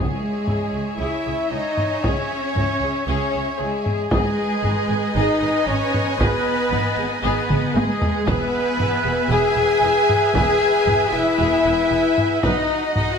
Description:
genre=cinematic, epic orchestral film score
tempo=115 BPM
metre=4/4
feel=straight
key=C# minor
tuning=A4 = 439 Hz
part: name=warm symphonic violin section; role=melody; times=0.0-13.2 s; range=G#4 to G#5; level=-29 LUFS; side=left 2 dB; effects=none
part: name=large flute ensemble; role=second line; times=0.0-13.2 s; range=G#4 to G#5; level=-29 LUFS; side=left 2 dB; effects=none
part: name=rich symphonic violin section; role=second line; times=0.0-13.2 s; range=C#5 to G#5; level=-29 LUFS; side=left 1 dB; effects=none
part: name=warm symphonic viola section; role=accompaniment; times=0.0-13.0 s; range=D#4 to B4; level=-28 LUFS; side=right 1 dB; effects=none
part: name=mellow French horn section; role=sustained chords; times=0.0-13.2 s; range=G#3 to G#4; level=-24 LUFS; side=left 5 dB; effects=none
part: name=mellow woodwind section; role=sustained chords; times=0.0-13.2 s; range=B3 to G#5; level=-32 LUFS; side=equal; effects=none
part: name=clear trumpet section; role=stabs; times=0.0-13.2 s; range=G#4 to G#5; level=-26 LUFS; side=right 3 dB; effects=none
part: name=rich symphonic cello section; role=bass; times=0.0-13.2 s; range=G#3 to G#4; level=-26 LUFS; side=equal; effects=none
part: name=rich symphonic double bass section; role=bass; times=0.0-13.0 s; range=E1 to C#2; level=-27 LUFS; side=right 3 dB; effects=none
part: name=timpani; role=percussion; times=0.0-0.7 s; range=C#3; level=-33 LUFS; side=left 1 dB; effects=none
part: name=solo taiko drums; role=drums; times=0.5-13.2 s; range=none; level=-24 LUFS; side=equal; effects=none
room=moderate scoring stage reverb, RT60 1.6 s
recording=none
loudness=-17 LUFS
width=side -6 dB against mid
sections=0.0-13.2 A section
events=drum fill 7.5-8.3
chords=0.0 C#m; 4.1 G#m; 8.3 E; 12.4 B

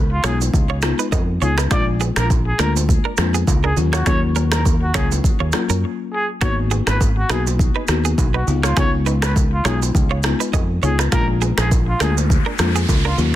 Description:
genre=afrobeats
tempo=102 BPM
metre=4/4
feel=swing 55% on 16ths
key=unclear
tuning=A4 = 440 Hz
part: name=buzzing marimba with medium mallets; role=accompaniment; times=0.0-13.4 s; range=F#3 to F#4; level=-25 LUFS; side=left 6 dB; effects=none
part: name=fingered electric bass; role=bass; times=0.0-13.4 s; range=G#1 to F#2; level=-19 LUFS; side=equal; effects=none
part: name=breathy trumpet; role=melody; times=0.1-13.2 s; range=E#4 to D5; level=-26 LUFS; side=equal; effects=ping-pong delay
part: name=direct-recorded clean electric guitar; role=riff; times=0.2-13.1 s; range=G#3 to D#5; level=-27 LUFS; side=right 8 dB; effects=ping-pong delay
part: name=deep house drum kit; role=drums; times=0.2-13.3 s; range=finger snaps, kick drum, rim click, shaker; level=-20 LUFS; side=equal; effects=soft clipping on snare
part: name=bongos and congas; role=percussion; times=0.4-13.3 s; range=none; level=-31 LUFS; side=right 6 dB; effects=none
part: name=noise sweep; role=sound effects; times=11.7-13.4 s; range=none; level=-28 LUFS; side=equal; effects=none
room=little or no reverb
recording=dense, heavily limited modern master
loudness=-16 LUFS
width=side -13 dB against mid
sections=0.0-13.4 A section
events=break 5.8-6.4; noise sweep 11.7-13.4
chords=0.0 C#7; 1.7 A#7; 3.8 D#m7; 6.4 G#m7; 8.5 C#7; 11.1 A#7

